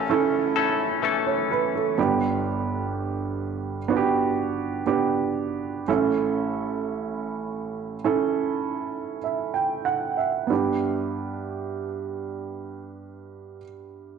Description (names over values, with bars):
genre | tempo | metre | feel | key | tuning
pop | 46-64 BPM | 4/4 | straight | G lydian | A4 = 440 Hz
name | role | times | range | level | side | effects
warm upright piano | accompaniment | 0.0-14.2 s | G1 to G5 | -24 LUFS | right 6 dB | none
direct-recorded clean electric guitar | arpeggios | 0.0-2.0 s | E3 to A4 | -25 LUFS | left 9 dB | wide subtle chorus
downlifter | sound effects | 0.0-2.0 s | none | -40 LUFS | left 3 dB | none
room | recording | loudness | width
wet echo chamber reverb, RT60 1.3 s, small room ambience | 1960s-style stereo with parts hard left and right | -23 LUFS | side -6 dB against mid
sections
0.0-10.5 A section; 10.5-14.2 B section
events
slowing down 2.0-10.5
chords
0.0 A; 2.0 G; 5.9 A; 10.5 G